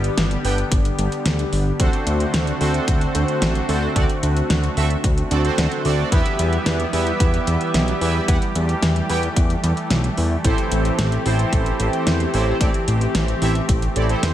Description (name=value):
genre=synthwave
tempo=111 BPM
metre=4/4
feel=straight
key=unclear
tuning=A4 = 440 Hz
part: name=warm analog pad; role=sustained chords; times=0.0-14.3 s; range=D3 to G4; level=-25 LUFS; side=left 1 dB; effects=lush chorus, sidechain pumping, shimmer reverb
part: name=fat analog bass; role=bass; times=0.0-14.3 s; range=G1 to E2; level=-21 LUFS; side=equal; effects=none
part: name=pop drum kit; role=drums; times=0.0-14.3 s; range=hi-hat, snare drum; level=-25 LUFS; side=equal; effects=studio reverb
part: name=analog synth brass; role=stabs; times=0.4-14.3 s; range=B3 to G5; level=-25 LUFS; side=right 3 dB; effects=chorus, tape echo, shimmer reverb
part: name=electronic kick drum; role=drums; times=0.7-13.8 s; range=none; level=-20 LUFS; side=equal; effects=studio reverb
room=light reverb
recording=none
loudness=-17 LUFS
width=side -12 dB against mid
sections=0.0-14.3 A section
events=none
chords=0.0 G; 1.8 D7; 6.1 Em; 10.4 Am7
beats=0.17 0.72 1.26 | 1.80 2.34 2.88 3.42 | 3.96 4.50 5.04 5.58 | 6.12 6.66 7.20 7.74 | 8.28 8.82 9.36 9.90 | 10.45 10.99 11.53 12.07 | 12.61 13.15 13.69 14.23